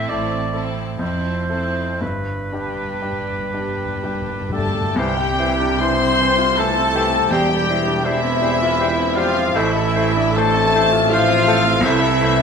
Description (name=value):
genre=classical, romantic movement for piano and orchestra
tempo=58-82 BPM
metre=3/4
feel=rubato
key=C major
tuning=A4 = 440 Hz
part: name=clear baby grand piano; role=melody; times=0.0-12.4 s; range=A1 to A4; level=-23 LUFS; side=left 2 dB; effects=none
part: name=dark studio violin section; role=melody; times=0.0-12.4 s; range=E5 to C6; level=-26 LUFS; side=left 3 dB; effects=none
part: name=rich studio violin section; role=second line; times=0.0-12.4 s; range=D4 to C6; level=-26 LUFS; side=left 5 dB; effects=none
part: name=warm cor anglais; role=second line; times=0.0-12.4 s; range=E4 to E5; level=-27 LUFS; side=right 2 dB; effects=none
part: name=rich studio viola section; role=accompaniment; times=0.0-12.4 s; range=G3 to C5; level=-27 LUFS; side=right 2 dB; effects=none
part: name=dark studio cello section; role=bass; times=0.1-12.4 s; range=E2 to C3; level=-28 LUFS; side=right 5 dB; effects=none
part: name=dark studio double bass section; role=bass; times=0.1-12.4 s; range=E1 to C2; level=-29 LUFS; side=right 5 dB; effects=none
part: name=timpani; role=percussion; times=2.0-4.9 s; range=G2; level=-30 LUFS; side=left 2 dB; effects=none
part: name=warm French horn section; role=sustained chords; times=4.5-12.4 s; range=E3 to C4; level=-25 LUFS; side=left 7 dB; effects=none
part: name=warm trumpet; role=stabs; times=4.5-12.4 s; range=E4 to C5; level=-25 LUFS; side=equal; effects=none
part: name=mellow hollow small flute group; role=second line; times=4.6-12.4 s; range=E5 to C6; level=-28 LUFS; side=left 3 dB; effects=none
part: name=bright clarinet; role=second line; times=5.0-12.4 s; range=C5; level=-29 LUFS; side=left 2 dB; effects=none
part: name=warm bassoon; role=accompaniment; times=5.0-12.4 s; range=E3 to A3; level=-27 LUFS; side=right 1 dB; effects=none
part: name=mellow tuba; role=bass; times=5.0-12.4 s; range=E1 to C2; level=-27 LUFS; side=right 6 dB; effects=none
room=moderate concert hall reverb, RT60 1.7 s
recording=close, detailed microphones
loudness=-16 LUFS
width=side -6 dB against mid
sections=0.0-5.0 A section; 5.0-12.4 B section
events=timpani fill 2.0-5.0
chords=0.0 Am; 1.0 Fmaj7; 2.0 G; 5.0 C; 7.3 C/E; 9.5 Am; 11.8 Am/C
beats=0.09 1.00 | 2.01 3.03 4.03 | 4.98 5.81 6.58 | 7.31 8.04 8.79 | 9.55 10.36 11.11 | 11.85